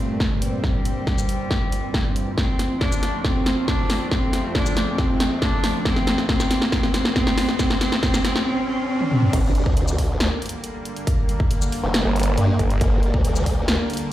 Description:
heavy wobble dubstep; 138 BPM; 4/4; half-time; G minor; A4 = 438 Hz
rich cello; melody; 0.0-9.3 s; G3 to D4; -26 LUFS; equal; digital delay
supersaw pad; sustained chords; 0.0-14.1 s; F2 to C4; -28 LUFS; equal; phaser, sidechain pumping
riser and impact; sound effects; 1.2-11.1 s; -30 LUFS; right 1 dB
big-room dance drum kit; drums; 0.2-14.1 s; crash cymbal, hi-hat, shaker, snare drum, toms; -24 LUFS; equal
electronic kick drum; drums; 0.2-13.6 s; -23 LUFS; equal
formant-sweep wobble bass; bass; 9.3-13.8 s; F1 to G2; -21 LUFS; equal; chorus, overdrive
vowel-sweep wobble bass; bass; 12.1-12.8 s; G1; -20 LUFS; equal; chorus, overdrive
moderate digital room reverb, RT60 1.0 s, digital ambience; played on a big sound system in a bare room, large studio reverb; -19 LUFS; side -13 dB against mid
0.0-9.3 A section; 9.3-14.1 B section
build-up 0.0-9.3; drum fill 0.0-8.5, 9.0-9.3; riser 1.2-9.3; drop 9.3-14.1; impact 9.3-11.1
0.0 Gm; 2.4 F; 9.3 Gm

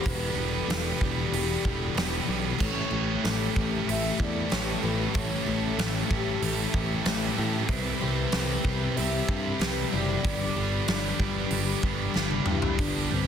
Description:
rock, shoegaze and dream pop; 94 BPM; 4/4; straight; G major; A4 = 440 Hz
mellow horn-like synth lead; melody; 0.0-13.3 s; C4 to E5; -36 LUFS; equal; chorus, analog delay
brassy analog pad; sustained chords; 0.0-13.3 s; C4 to B5; -39 LUFS; right 1 dB; chorus
picked twelve-string acoustic guitar; arpeggios; 0.0-12.8 s; G4 to B4; -39 LUFS; left 10 dB; wide subtle chorus, analog delay
biting overdriven guitar; riff; 0.0-13.3 s; E2 to G4; -32 LUFS; right 14 dB; reverse reverb
thick fuzz guitar; riff; 0.0-13.3 s; E2 to C4; -32 LUFS; left 10 dB; distortion, ensemble chorus
picked electric bass; bass; 0.1-13.3 s; E1 to A2; -31 LUFS; equal
huge arena drum kit; drums; 0.1-12.9 s; crash cymbal, hi-hat, kick drum, snare drum, toms; -30 LUFS; equal
small room ambience; dense, heavily limited modern master; -25 LUFS; side -8 dB against mid
0.0-12.8 A section
drum fill 12.2-12.8
0.0 Em; 2.6 A7; 7.7 Cmaj7; 10.2 G

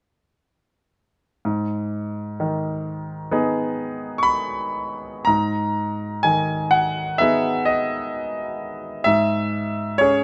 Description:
classical, romantic nocturne for solo piano; 57-66 BPM; 4/4; rubato; G# minor; A4 = 442 Hz
bright concert grand piano; solo; 1.4-10.2 s; G#2 to C#6; -22 LUFS; equal
light reverb; close, detailed microphones; -23 LUFS; mono
1.5-5.3 A section; 5.3-10.2 B section
1.5 G#m; 9.1 C#m/G#

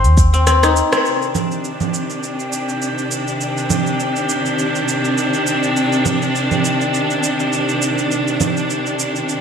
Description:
organic downtempo; 102 BPM; 4/4; swing 55% on 16ths; C minor; A4 = 441 Hz
guzheng; arpeggios; 0.0-3.9 s; C4 to C5; -18 LUFS; left 4 dB; ping-pong delay
woody FM bass; bass; 0.0-0.8 s; Eb2; -13 LUFS; equal; sidechain pumping
organic electronic drum kit; drums; 0.0-9.4 s; cabasa, congas, hi-hat, rim click; -21 LUFS; right 3 dB; overdrive, gated reverb
clear studio string section; sustained chords; 1.1-9.4 s; C3 to D4; -18 LUFS; equal; sidechain pumping
drifting glass-harmonics texture; texture; 1.5-9.4 s; G4 to G5; -25 LUFS; left 2 dB; chorus, built-in reverb
wet plate reverb, RT60 1.4 s, digital ambience; bright 1980s-style digital production; -15 LUFS; side -7 dB against mid
0.0-1.1 A section; 1.1-9.4 B section
drum fill 0.5-1.1; band accent 0.9
0.0 Cm; 1.1 Cmadd9

